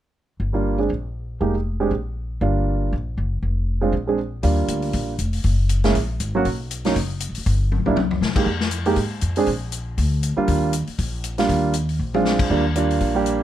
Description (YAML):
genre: jazz, small-group swing and bop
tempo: 238 BPM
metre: 4/4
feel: swing 57% on 8ths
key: Eb major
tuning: A4 = 438 Hz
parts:
  - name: upright bass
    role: bass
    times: 0.4-13.4 s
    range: F1 to C3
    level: -23 LUFS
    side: left 1 dB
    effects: none
  - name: warm grand piano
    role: accompaniment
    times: 0.5-13.4 s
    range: Gb3 to Ab4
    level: -21 LUFS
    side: right 4 dB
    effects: none
  - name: swinging big-band drum kit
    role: drums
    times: 4.4-13.3 s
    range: crash cymbal, hi-hat, kick drum, snare drum, toms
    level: -26 LUFS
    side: left 4 dB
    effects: none
room: little or no reverb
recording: none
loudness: -19 LUFS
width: side -12 dB against mid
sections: 0.4-4.4 A section; 4.4-12.5 B section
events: drum fill 7.7-8.2, 12.0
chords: 0.4 Gm7; 0.9 N.C.; 1.4 Fm11; 1.9 N.C.; 2.4 Gm7; 2.9 Gb; 3.4 Fm; 3.9 Bb9; 4.4 Ebmaj7; 5.4 Gb; 6.5 Bmaj7(no3); 7.5 Gm; 8.0 C5; 8.5 Fm; 9.5 Bb; 10.5 Ebmaj7; 12.0 Bb7; 12.5 Ebmaj7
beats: | 0.39 0.65 0.90 1.15 | 1.40 1.66 1.91 2.16 | 2.42 2.67 2.92 3.17 | 3.43 3.68 3.93 4.18 | 4.44 4.69 4.94 5.19 | 5.45 5.70 5.95 6.20 | 6.45 6.71 6.96 7.21 | 7.46 7.71 7.97 8.22 | 8.47 8.72 8.97 9.22 | 9.48 9.73 9.98 10.23 | 10.48 10.74 10.99 11.24 | 11.49 11.75 12.00 12.25 | 12.50 12.76 13.01 13.26